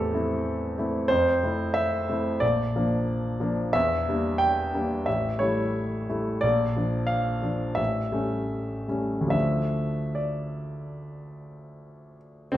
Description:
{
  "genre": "classical, romantic character piece for solo piano",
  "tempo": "68-95 BPM",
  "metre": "4/4",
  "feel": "rubato",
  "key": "D minor",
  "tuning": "A4 = 440 Hz",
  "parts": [
    { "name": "warm grand piano", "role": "solo", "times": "0.0-12.6 s", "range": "A1 to G5", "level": "-24 LUFS", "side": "equal", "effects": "none" }
  ],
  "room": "wet recital hall reverb, RT60 1.4 s",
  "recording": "none",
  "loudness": "-24 LUFS",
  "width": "side -13 dB against mid",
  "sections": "0.0-12.6 A section",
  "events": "none",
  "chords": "0.0 Am; 1.1 Fmaj7; 2.4 Bb; 3.7 Em7b5; 5.1 A7; 6.4 Bb; 7.8 A7; 9.3 Dm",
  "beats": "0.47 | 1.11 1.76 2.42 3.08 | 3.74 4.41 5.07 5.74 | 6.43 7.11 7.79 8.52 | 9.34 10.18 10.99 11.79 | 12.55"
}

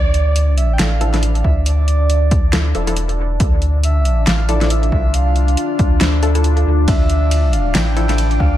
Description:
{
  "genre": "deep dubstep",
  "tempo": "138 BPM",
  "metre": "4/4",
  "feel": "swing 58% on 16ths, half-time",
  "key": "D minor",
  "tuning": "A4 = 440 Hz",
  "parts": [
    { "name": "breathy flute-like synth lead", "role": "melody", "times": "0.0-8.6 s", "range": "D5 to G5", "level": "-25 LUFS", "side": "right 2 dB", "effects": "chorus, dub echo" },
    { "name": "deep dark ambient pad", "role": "sustained chords", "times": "0.0-8.6 s", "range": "D4 to D5", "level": "-24 LUFS", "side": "left 2 dB", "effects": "chorus, built-in reverb" },
    { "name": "soft dub sub bass", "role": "bass", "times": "0.0-8.6 s", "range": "E1 to D2", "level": "-15 LUFS", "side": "equal", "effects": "none" },
    { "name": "deep house drum kit", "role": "drums", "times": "0.1-8.4 s", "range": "hi-hat, ride cymbal, snare drum", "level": "-21 LUFS", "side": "right 1 dB", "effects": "overdrive" },
    { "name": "filtered dub chord stab", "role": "stabs", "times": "0.8-8.3 s", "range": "F3 to A4", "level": "-25 LUFS", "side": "left 2 dB", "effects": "chorus, dub echo" },
    { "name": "electronic kick drum", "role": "drums", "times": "1.4-8.5 s", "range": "none", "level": "-16 LUFS", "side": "equal", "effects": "overdrive" },
    { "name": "wind-like tuned noise texture", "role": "texture", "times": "7.3-8.6 s", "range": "D4 to D5", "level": "-34 LUFS", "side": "right 2 dB", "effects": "none" }
  ],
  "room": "light reverb",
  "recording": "none",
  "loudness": "-13 LUFS",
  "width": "side -13 dB against mid",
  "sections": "0.0-8.6 A section",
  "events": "none",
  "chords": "0.0 Dmadd9",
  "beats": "0.36 0.79 1.23 | 1.66 2.10 2.53 2.97 | 3.40 3.83 4.27 4.71 | 5.14 5.58 6.01 6.44 | 6.88 7.31 7.75 8.18"
}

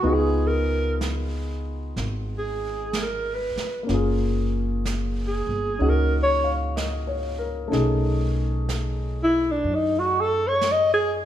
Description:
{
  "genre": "jazz ballad",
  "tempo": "62 BPM",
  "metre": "4/4",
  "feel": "swing 66% on 8ths",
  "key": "unclear",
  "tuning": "A4 = 441 Hz",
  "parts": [
    { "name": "mellow alto saxophone", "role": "melody", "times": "0.0-11.1 s", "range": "D4 to D#5", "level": "-22 LUFS", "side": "equal", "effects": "none" },
    { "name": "warm grand piano", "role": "accompaniment", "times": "0.0-11.3 s", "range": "A3 to E#5", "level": "-28 LUFS", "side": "left 2 dB", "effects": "none" },
    { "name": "upright bass", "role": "bass", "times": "0.0-11.3 s", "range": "F#1 to F#2", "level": "-26 LUFS", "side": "equal", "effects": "none" },
    { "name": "jazz brush drum kit", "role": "drums", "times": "0.0-11.3 s", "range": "brushed snare drum, hi-hat, snare drum", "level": "-35 LUFS", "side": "right 4 dB", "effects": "none" }
  ],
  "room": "light reverb",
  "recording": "none",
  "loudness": "-22 LUFS",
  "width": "side -11 dB against mid",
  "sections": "0.0-11.3 A section",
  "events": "alto saxophone solo 0.0-11.3",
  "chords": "0.0 C#9; 3.9 F#maj9; 7.7 B13",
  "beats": "| 0.04 1.00 1.96 2.93 | 3.88 4.84 5.80 6.76 | 7.72 8.68 9.65 10.62"
}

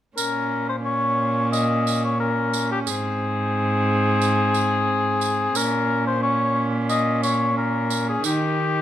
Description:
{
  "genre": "classical, renaissance-style consort dance",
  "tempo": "89 BPM",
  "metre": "4/4",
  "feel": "straight",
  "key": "Bb dorian",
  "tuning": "A4 = 441 Hz",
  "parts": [
    { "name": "warm oboe", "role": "melody", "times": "0.2-8.8 s", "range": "G4 to Eb5", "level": "-22 LUFS", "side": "left 4 dB", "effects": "none" },
    { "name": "warm viola", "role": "second line", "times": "0.2-8.8 s", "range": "C4 to Eb4", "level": "-27 LUFS", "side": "right 3 dB", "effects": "none" },
    { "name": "rich cello", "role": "bass", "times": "0.2-8.8 s", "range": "Ab2 to Eb3", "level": "-24 LUFS", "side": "right 1 dB", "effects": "none" },
    { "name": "tambourine", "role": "percussion", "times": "0.2-8.6 s", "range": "none", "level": "-30 LUFS", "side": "right 12 dB", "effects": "none" }
  ],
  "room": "light reverb",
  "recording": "close, detailed microphones",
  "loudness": "-19 LUFS",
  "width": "side -11 dB against mid",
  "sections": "0.2-8.8 A section",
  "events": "none",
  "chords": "0.2 Bbm; 2.9 Ab; 5.6 Bbm; 8.2 Eb",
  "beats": "| 0.18 0.85 1.53 2.20 | 2.87 3.54 4.21 4.88 | 5.56 6.23 6.90 7.57 | 8.25"
}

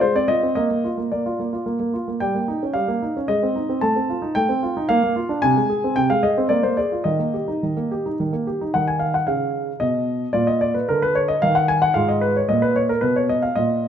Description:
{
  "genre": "classical-period piano sonatina",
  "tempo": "112 BPM",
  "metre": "3/4",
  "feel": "straight",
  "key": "Eb major",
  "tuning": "A4 = 440 Hz",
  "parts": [
    { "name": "warm baby grand piano", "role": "solo", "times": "0.0-13.9 s", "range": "Ab2 to A5", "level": "-18 LUFS", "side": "equal", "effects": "none" }
  ],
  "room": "moderate recital hall reverb, RT60 1.6 s",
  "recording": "close, detailed microphones",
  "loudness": "-18 LUFS",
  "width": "side -9 dB against mid",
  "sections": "0.0-8.7 A section; 8.7-13.9 B section",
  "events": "none",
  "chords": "0.0 Fm/Ab; 0.6 Bb; 2.2 Eb7/G; 3.3 Ab; 3.8 F7/A; 4.9 Bb; 5.4 Ab/C; 6.5 Bb7; 7.1 Eb; 8.7 Badd9; 10.3 Bb; 11.4 N.C.; 11.9 Fdim/Ab",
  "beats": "0.03 | 0.57 1.12 1.67 | 2.22 2.76 3.30 | 3.83 4.36 4.89 | 5.42 5.96 6.50 | 7.06 7.62 8.18 | 8.74 9.28 9.81 | 10.35 10.88 11.41 | 11.95 12.48 13.01 | 13.56"
}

